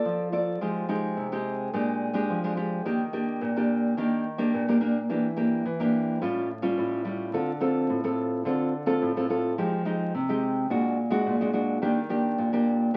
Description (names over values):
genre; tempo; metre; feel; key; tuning
samba; 107 BPM; 4/4; straight; Bb major; A4 = 442 Hz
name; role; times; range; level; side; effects
nylon-string guitar; solo; 0.0-13.0 s; A2 to D5; -27 LUFS; equal; none
room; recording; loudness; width
wet studio reverb, RT60 0.9 s; very old 78 rpm record, vinyl crackle; -27 LUFS; mono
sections
0.0-13.0 A section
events
none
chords
0.0 Bbmaj7 (rootless); 0.6 Fm9; 1.7 Bb6; 2.9 Ebmaj7; 5.1 Em7b5; 6.2 Aaug7; 7.3 Dm7; 9.6 Fm9; 10.7 Bbaug7; 11.8 Ebmaj7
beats
0.05 | 0.61 1.17 1.73 2.29 | 2.86 3.42 3.98 4.54 | 5.10 5.66 6.22 6.78 | 7.34 7.90 8.46 9.02 | 9.58 10.14 10.70 11.26 | 11.82 12.38 12.94